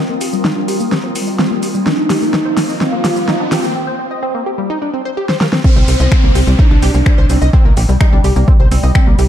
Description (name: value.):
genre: melodic techno.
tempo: 127 BPM.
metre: 4/4.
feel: straight.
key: C minor.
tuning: A4 = 440 Hz.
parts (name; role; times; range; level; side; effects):
tight sequenced synth; arpeggios; 0.0-9.2 s; G3 to Eb5; -20 LUFS; left 1 dB; chorus, phaser, sidechain pumping, tape echo.
riser and downlifter; sound effects; 0.3-9.3 s; none; -27 LUFS; right 1 dB; none.
ethereal airy pad; texture; 0.0-3.8 s; C4 to Eb6; -23 LUFS; left 2 dB; ensemble chorus, built-in reverb, sidechain pumping.
deep house drum kit; drums; 0.2-9.3 s; crash cymbal, finger snaps, hi-hat, shaker, snare drum; -19 LUFS; equal; overdrive.
expressive synth lead; melody; 0.4-9.3 s; G3 to F4; -20 LUFS; right 1 dB; ensemble chorus, sidechain pumping, dub echo.
electronic kick drum; drums; 5.6-9.0 s; none; -11 LUFS; equal; overdrive.
tight sequencer bass; bass; 5.8-9.3 s; Bb1 to C2; -12 LUFS; equal; sidechain pumping.
room: light reverb, digital ambience.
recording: dark, warm production.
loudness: -11 LUFS.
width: side -10 dB against mid.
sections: 0.0-5.6 A section; 5.6-9.3 B section.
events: build-up 0.0-5.6; drum fill 0.0-3.8, 5.3-5.6; filter sweep on synth arpeggio sound 0.0-5.6; filter sweep on analog synth lead 0.0-5.6; riser 0.3-3.8; break 3.8-5.6; drop 5.6-9.3.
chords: 0.0 Cm; 5.6 C5.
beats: 0.45 0.92 1.39 | 1.86 2.34 2.81 3.28 | 3.75 4.23 4.70 5.17 | 5.64 6.12 6.59 7.06 | 7.53 8.01 8.48 8.95.